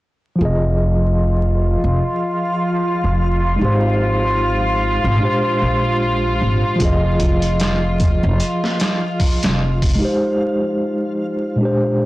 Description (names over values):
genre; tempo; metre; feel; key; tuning
trip hop; 75 BPM; 4/4; swing 56% on 16ths; F dorian; A4 = 441 Hz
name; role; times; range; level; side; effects
mellow tine electric piano; accompaniment; 0.4-12.1 s; Bb2 to Eb5; -20 LUFS; equal; tremolo, low-pass filter, tape echo
rich chamber violin section; sustained chords; 0.4-10.0 s; F4; -22 LUFS; equal; low-pass filter
upright bass; bass; 0.4-10.0 s; F1 to Bb1; -18 LUFS; equal; none
backwards swelling texture; texture; 1.1-10.0 s; F3 to F4; -28 LUFS; right 1 dB; built-in reverb
trip hop sampler-style drum kit; drums; 6.8-10.0 s; hi-hat, kick drum, snare drum; -19 LUFS; equal; none
room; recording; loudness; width
light reverb, digital ambience; blown-out, overdriven recording, vinyl crackle, overdrive; -15 LUFS; side -18 dB against mid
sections
0.4-12.1 A section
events
filter sweep on violin section 0.4-12.1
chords
0.4 Fm7; 3.6 Abmaj7; 5.2 Bb13; 6.8 Fm7; 10.0 Abmaj7